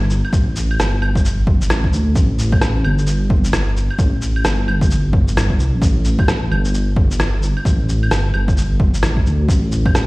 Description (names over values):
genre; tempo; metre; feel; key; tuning
future garage; 131 BPM; 4/4; swing 62% on 16ths; unclear; A4 = 441 Hz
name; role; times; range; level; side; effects
dark detuned saw bass; bass; 0.0-10.1 s; G1 to D2; -17 LUFS; equal; sidechain pumping
electronic shaker, claves and rim click; drums; 0.1-10.1 s; none; -22 LUFS; equal; studio reverb
electronic kick drum; drums; 0.3-9.9 s; none; -16 LUFS; equal; overdrive, studio reverb
room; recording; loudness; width
digital ambience; played on a big sound system in a bare room, stone room reverb, vinyl crackle; -14 LUFS; side -22 dB against mid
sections
0.0-10.1 A section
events
none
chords
none